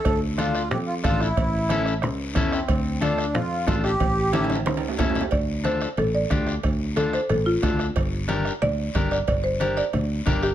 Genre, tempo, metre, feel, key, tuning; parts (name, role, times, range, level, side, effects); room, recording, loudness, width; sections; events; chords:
latin, cumbia; 182 BPM; 4/4; straight; D harmonic minor, D minor from 5.3 s; A4 = 438 Hz
accordion; second line; 0.0-4.5 s; C4 to A4; -26 LUFS; equal; light tremolo tuning
bombo; percussion; 0.0-10.5 s; -28 LUFS; right 1 dB
fingered electric bass; bass; 0.1-10.5 s; G1 to F2; -26 LUFS; equal
congas; percussion; 0.1-10.4 s; -31 LUFS; left 2 dB
cowbell and timbales; percussion; 0.1-10.4 s; -33 LUFS; right 7 dB
guiro; percussion; 0.1-10.5 s; -38 LUFS; left 6 dB
electric guitar at the edge of break-up; accompaniment; 0.4-10.5 s; C#4 to Bb4; -28 LUFS; left 3 dB
buzzing marimba with medium mallets; melody; 5.3-10.5 s; F4 to D5; -25 LUFS; equal; plate reverb
light reverb; -21 LUFS; side -11 dB against mid
0.0-5.3 A section; 5.3-10.5 B section
accordion solo 0.0-5.3; drum fill 4.3-5.3; marimba solo 5.3-10.5
0.1 Dm; 1.4 A; 2.7 Dm; 4.0 A7; 5.3 Dm; 8.0 Gm